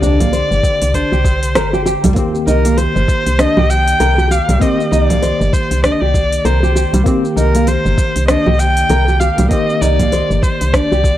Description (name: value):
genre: organic downtempo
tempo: 98 BPM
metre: 4/4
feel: swing 59% on 16ths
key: C minor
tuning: A4 = 439 Hz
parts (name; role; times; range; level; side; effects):
- warm kamancheh; melody; 0.0-11.2 s; Bb4 to G5; -18 LUFS; equal; tape echo
- tine electric piano; accompaniment; 0.0-11.2 s; D3 to G4; -21 LUFS; left 1 dB; overdrive, fast stereo tremolo, sidechain pumping, tape echo
- nylon-string guitar; arpeggios; 0.0-11.0 s; G3 to C5; -18 LUFS; equal; tape echo
- woody FM bass; bass; 0.0-11.2 s; G1 to C2; -15 LUFS; equal; sidechain pumping
- organic electronic drum kit; drums; 0.0-11.2 s; congas, hi-hat, rim click, shaker; -20 LUFS; right 1 dB; overdrive, studio reverb
- tabla; percussion; 0.0-2.1 s; none; -28 LUFS; left 1 dB; none
- electronic kick drum; drums; 0.2-11.2 s; none; -17 LUFS; equal; overdrive, studio reverb
room: studio ambience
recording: dry, gritty hardware recording, transformer saturation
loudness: -11 LUFS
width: side -13 dB against mid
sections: 0.0-2.2 A section; 2.2-11.2 A section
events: band accent 1.6-1.9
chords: 0.0 Bbadd9; 2.2 Cmadd9